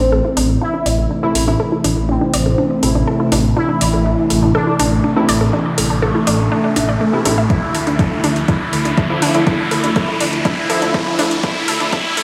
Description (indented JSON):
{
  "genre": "melodic techno",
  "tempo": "122 BPM",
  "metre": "4/4",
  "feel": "straight",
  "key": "D minor",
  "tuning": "A4 = 441 Hz",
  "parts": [
    { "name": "resonant sweep polysynth", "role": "melody", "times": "0.0-12.2 s", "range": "A3 to E4", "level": "-23 LUFS", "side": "equal", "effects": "chorus, phaser, tape echo" },
    { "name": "lush unison pad", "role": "sustained chords", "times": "0.3-12.2 s", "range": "C3 to E4", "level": "-24 LUFS", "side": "equal", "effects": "chorus, sidechain pumping" },
    { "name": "unison pluck", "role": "arpeggios", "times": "0.0-12.2 s", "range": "A3 to E5", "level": "-24 LUFS", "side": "equal", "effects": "cassette tape, sidechain pumping, tape echo" },
    { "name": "dark detuned saw bass", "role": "bass", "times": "0.0-12.2 s", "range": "A1 to D2", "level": "-22 LUFS", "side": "equal", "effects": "sidechain pumping" },
    { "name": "riser", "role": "sound effects", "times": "1.2-12.2 s", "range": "none", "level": "-27 LUFS", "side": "equal", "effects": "none" },
    { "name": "electronic hi-hat", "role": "drums", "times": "0.4-12.2 s", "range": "none", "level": "-25 LUFS", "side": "equal", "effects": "sidechain pumping on hats, small room reverb" },
    { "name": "sync-sweep polysynth", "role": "stabs", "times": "1.2-11.3 s", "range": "C3 to E4", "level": "-25 LUFS", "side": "equal", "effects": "chorus, sidechain pumping, tape echo" },
    { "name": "electronic kick drum", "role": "drums", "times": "7.5-12.0 s", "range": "none", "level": "-20 LUFS", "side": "equal", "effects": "small room reverb" }
  ],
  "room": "moderate huge ambient reverb, RT60 4.3 s",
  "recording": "played on a big sound system in a bare room, large studio reverb, high-pass filter",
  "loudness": "-16 LUFS",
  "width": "mono",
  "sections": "0.0-12.2 A section",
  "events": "build-up 0.0-12.2; filter sweep on synth arpeggio sound 0.0-12.2; filter sweep on analog polysynth 0.0-12.2; filter sweep on analog synth pad 0.0-12.2; filter sweep 0.0-12.2; riser 1.2-12.2",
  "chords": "0.0 Am; 7.5 Dmadd9"
}